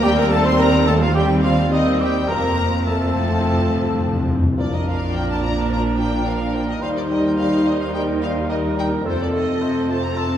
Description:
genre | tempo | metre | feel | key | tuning
quick classical-period movement for symphony orchestra | 107 BPM | 4/4 | straight | Bb major | A4 = 440 Hz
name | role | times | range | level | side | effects
rich chamber violin section | melody | 0.0-10.4 s | C5 to C6 | -29 LUFS | left 5 dB | none
mellow concert flute | second line | 0.0-10.2 s | C5 to C6 | -34 LUFS | left 3 dB | none
mellow cor anglais | second line | 0.0-10.4 s | Eb4 to C5 | -30 LUFS | right 3 dB | none
rich chamber violin section | second line | 0.0-10.4 s | A3 to C6 | -32 LUFS | left 3 dB | none
warm clarinet | second line | 0.0-10.3 s | C4 to F4 | -30 LUFS | left 1 dB | none
dark bassoon | accompaniment | 0.0-10.3 s | F3 to A3 | -28 LUFS | left 1 dB | none
warm symphonic viola section | accompaniment | 0.0-10.4 s | F3 to Eb4 | -24 LUFS | right 1 dB | none
mellow French horn section | sustained chords | 0.0-10.4 s | Eb3 to Eb4 | -24 LUFS | left 2 dB | none
mellow trumpet section | stabs | 0.0-10.4 s | Eb4 to C5 | -28 LUFS | right 2 dB | none
dark chamber double bass section | bass | 0.0-10.4 s | F1 to Eb2 | -25 LUFS | right 2 dB | none
warm symphonic cello section | bass | 0.0-10.4 s | Eb2 to Bb2 | -26 LUFS | right 2 dB | none
timpani | percussion | 2.3-5.4, 9.1-9.9 s | F2 to Bb2 | -23 LUFS | left 1 dB | none
room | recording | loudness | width
wet recital hall reverb, RT60 1.8 s | heard from further back in the room | -17 LUFS | side -10 dB against mid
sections
0.0-4.6 A section; 4.6-10.4 B section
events
timpani fill 2.3-4.6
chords
0.0 Cm/Eb; 2.3 F; 4.6 Bb; 6.8 Eb; 9.1 F7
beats
| 0.04 0.60 1.16 1.72 | 2.29 2.87 3.44 4.01 | 4.58 5.14 5.70 6.26 | 6.82 7.38 7.94 8.50 | 9.06 9.62 10.17

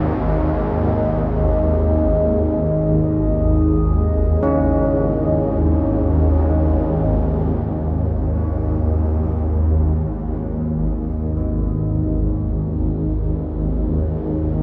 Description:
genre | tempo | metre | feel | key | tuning
dark ambient drone | free time | none | none | G# minor | A4 = 440 Hz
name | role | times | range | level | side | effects
dark analog pad | sustained chords | 0.0-14.6 s | D#4 to D#5 | -26 LUFS | equal | chorus, phaser
carillon bells | arpeggios | 0.0-14.6 s | G#2 to C#4 | -30 LUFS | equal | diffuse ambient delay
swarming drone | drone | 0.0-14.6 s | G#1 to D#2 | -20 LUFS | equal | built-in reverb
bronze singing bowl | texture | 7.3-14.6 s | none | barely audible | none | none
room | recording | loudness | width
wet cathedral reverb, RT60 5.9 s | dark, warm production | -19 LUFS | mono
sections
0.0-7.3 A section; 7.3-14.6 B section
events
none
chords
0.0 G#5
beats
free time

